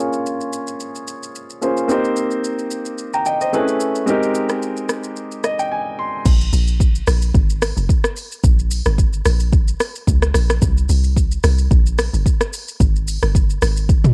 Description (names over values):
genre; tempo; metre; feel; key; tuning
amapiano; 110 BPM; 4/4; swing 55% on 16ths; Bb dorian; A4 = 440 Hz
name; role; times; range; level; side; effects
warm grand piano; accompaniment; 0.0-6.3 s; Ab3 to C6; -22 LUFS; equal; low-pass filter, cassette tape
deep house drum kit; drums; 0.1-14.1 s; crash cymbal, hi-hat, kick drum, rim click, shaker, toms; -20 LUFS; equal; none
deep log drum bass; bass; 6.3-14.1 s; F1 to Db2; -19 LUFS; equal; none
room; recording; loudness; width
digital ambience; home recording on cassette; -18 LUFS; mono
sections
0.0-6.3 A section; 6.3-14.1 B section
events
filter sweep on grand piano 0.0-6.3; grand piano fill 5.2-6.3; drop 6.3-14.1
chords
0.0 Bbm9; 1.9 Cm7; 3.5 Amaj9; 4.1 Abmaj9; 6.3 Bb7(no3); 10.6 C5; 12.3 N.C.